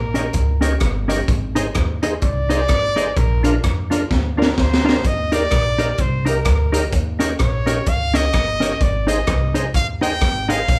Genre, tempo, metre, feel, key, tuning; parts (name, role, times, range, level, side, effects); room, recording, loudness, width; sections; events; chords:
ska; 128 BPM; 4/4; swing 58% on 8ths; Eb major; A4 = 439 Hz
clear trumpet; melody; 0.0-10.8 s; Bb4 to G5; -25 LUFS; equal
upright bass; bass; 0.0-10.8 s; G1 to F2; -24 LUFS; equal
mellow electric guitar; accompaniment; 0.1-10.6 s; Db4 to Eb5; -26 LUFS; equal
overdriven tonewheel organ; stabs; 0.1-10.6 s; D4 to Db5; -29 LUFS; equal; chorus vibrato
crunchy breakbeat drum kit; drums; 0.1-10.8 s; hi-hat, kick drum, rim click, snare drum; -23 LUFS; equal
moderate large studio reverb, RT60 0.9 s; band playing live in one room; -19 LUFS; mono
0.0-10.8 A section
trumpet solo 0.0-10.8; drum fill 4.1-5.0
0.0 Eb7; 1.3 Ab; 3.2 Bb; 5.0 Eb; 6.9 Eb7; 8.8 Ab